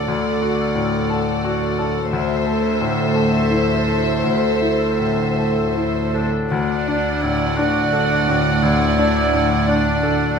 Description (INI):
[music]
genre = cinematic, emotional film score for orchestra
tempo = 52-59 BPM (dotted quarters)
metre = 6/8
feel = rubato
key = D major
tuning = A4 = 440 Hz
[part]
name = clear studio violin section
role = melody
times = 0.0-10.4 s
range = E5 to F#5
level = -28 LUFS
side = left 4 dB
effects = none
[part]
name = dark chamber violin section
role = second line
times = 0.0-10.4 s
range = C5 to D5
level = -24 LUFS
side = equal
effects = none
[part]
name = bright grand piano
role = accompaniment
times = 0.0-10.4 s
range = D2 to A4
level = -21 LUFS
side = left 4 dB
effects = none
[part]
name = rich studio viola section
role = accompaniment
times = 0.0-10.4 s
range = D4 to A4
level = -26 LUFS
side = right 5 dB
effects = none
[part]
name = warm studio cello section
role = bass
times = 0.0-10.4 s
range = D2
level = -24 LUFS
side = right 2 dB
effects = none
[part]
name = warm cor anglais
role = melody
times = 6.1-10.4 s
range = D4 to F#4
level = -23 LUFS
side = right 4 dB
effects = none
[part]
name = warm studio double bass section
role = bass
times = 6.5-10.4 s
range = D2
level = -24 LUFS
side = right 3 dB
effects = none
[sound]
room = moderate scoring stage reverb, RT60 1.5 s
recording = none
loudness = -16 LUFS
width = side -6 dB against mid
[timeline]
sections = 0.0-6.5 A section; 6.5-10.4 B section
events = none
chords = 0.0 D; 2.1 Am/D; 6.5 D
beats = | 0.09 1.12 | 2.14 3.17 | 4.26 5.39 | 6.51 7.58 | 8.63 9.69